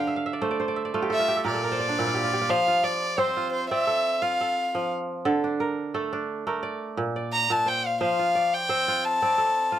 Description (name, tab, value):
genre	west african traditional, West African string and xylophone music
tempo	87 BPM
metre	4/4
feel	swing 54% on 16ths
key	F major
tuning	A4 = 440 Hz
part	rich violin	melody	0.0-9.8 s	C5 to Bb5	-24 LUFS	left 1 dB	none
part	kora	arpeggios	0.0-9.8 s	Bb2 to G5	-26 LUFS	right 2 dB	none
room	light reverb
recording	none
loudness	-23 LUFS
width	side -11 dB against mid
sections	0.0-9.8 A section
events	kora fill 0.0-2.5; violin solo 0.0-9.8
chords	0.0 D5; 1.1 N.C.; 2.5 F; 5.2 D5; 6.6 Bb; 8.0 F